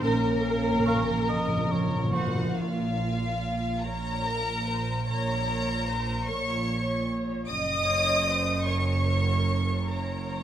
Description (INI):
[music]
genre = cinematic, emotional film score for orchestra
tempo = 49 BPM (dotted quarters)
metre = 6/8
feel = rubato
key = Bb minor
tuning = A4 = 435 Hz
[part]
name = rich studio violin section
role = melody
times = 0.0-10.4 s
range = Bb4 to Eb6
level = -31 LUFS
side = left 2 dB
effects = none
[part]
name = dark clarinet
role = second line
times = 0.0-2.1 s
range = Db4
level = -35 LUFS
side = right 1 dB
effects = none
[part]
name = warm chamber violin section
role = second line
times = 0.0-10.4 s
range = F4 to Eb5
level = -34 LUFS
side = left 1 dB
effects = none
[part]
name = dark symphonic viola section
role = accompaniment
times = 0.0-10.4 s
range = Bb4 to Eb5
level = -34 LUFS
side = right 1 dB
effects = none
[part]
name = dark French horn section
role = sustained chords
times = 0.0-1.9 s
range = Db4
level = -38 LUFS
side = left 3 dB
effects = none
[part]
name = warm symphonic cello section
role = bass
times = 0.0-10.4 s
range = Gb2 to Bb3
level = -32 LUFS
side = right 2 dB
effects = none
[part]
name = warm symphonic double bass section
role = bass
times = 0.0-10.4 s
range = Gb1 to Bb1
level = -31 LUFS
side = right 3 dB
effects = none
[part]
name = timpani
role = percussion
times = 0.0-2.5 s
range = Bb2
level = -30 LUFS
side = equal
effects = none
[part]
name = hollow small flute group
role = second line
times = 0.9-2.3 s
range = Db6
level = -37 LUFS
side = right 4 dB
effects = none
[part]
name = mellow cor anglais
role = second line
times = 0.9-2.6 s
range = C5 to F5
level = -34 LUFS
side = equal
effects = none
[sound]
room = moderate scoring stage reverb, RT60 1.5 s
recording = none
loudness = -24 LUFS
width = side -10 dB against mid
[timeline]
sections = 0.0-2.6 A section; 2.6-10.4 A section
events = timpani fill 0.0-2.6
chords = 0.0 Bbm; 7.5 Gb